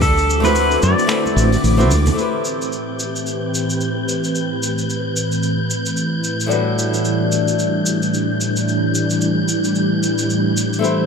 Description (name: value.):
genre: sunset chillout.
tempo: 111 BPM.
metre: 4/4.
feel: swing 58% on 16ths.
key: A dorian.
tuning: A4 = 440 Hz.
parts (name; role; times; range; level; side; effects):
pedal steel guitar; melody; 0.0-1.9 s; A4 to D5; -21 LUFS; left 2 dB; ping-pong delay.
soft string machine; sustained chords; 0.0-11.1 s; A2 to C5; -19 LUFS; equal; ensemble chorus.
woody fretless electric bass; bass; 0.0-2.1 s; A1 to F#2; -16 LUFS; equal; none.
vintage brush drum kit; drums; 0.0-11.0 s; cabasa, finger snaps, hi-hat; -25 LUFS; equal; none.
wind-like tuned noise texture; texture; 0.0-11.1 s; D6 to G6; -28 LUFS; left 2 dB; built-in reverb.
flamenco guitar; accompaniment; 0.4-11.1 s; A2 to C5; -23 LUFS; moving between left 5 dB and right 3 dB; auto-pan, digital delay.
congas; percussion; 0.4-2.2 s; none; -26 LUFS; right 4 dB; none.
room: moderate lush hall reverb, RT60 1.9 s, studio reverb.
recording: none.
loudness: -16 LUFS.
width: side -6 dB against mid.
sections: 0.0-2.2 A section; 2.2-11.1 B section.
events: none.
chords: 0.0 D13; 2.2 Am7; 6.5 Em7/A.